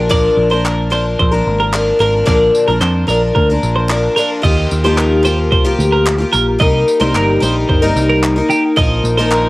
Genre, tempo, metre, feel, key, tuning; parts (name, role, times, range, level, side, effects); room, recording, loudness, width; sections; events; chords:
acoustic pop; 111 BPM; 4/4; straight; Eb major; A4 = 440 Hz
picked twelve-string acoustic guitar; accompaniment; 0.0-9.5 s; Bb2 to Bb4; -14 LUFS; left 2 dB
picked electric bass; bass; 0.0-9.5 s; G1 to F2; -17 LUFS; equal
twelve-string electric guitar; arpeggios; 0.1-9.5 s; G4 to Eb5; -18 LUFS; right 3 dB; wide subtle chorus
dusty soul sampler-style drum kit; drums; 0.1-9.4 s; crash cymbal, handclaps, kick drum, tambourine; -19 LUFS; equal; cassette tape
group handclap; percussion; 0.7-9.4 s; -26 LUFS; left 2 dB
light reverb; home recording on cassette; -11 LUFS; side -19 dB against mid
0.0-4.4 A section; 4.4-9.5 B section
0.0 Bb; 4.4 Ebadd9; 6.6 Cm7; 8.8 Bbsus4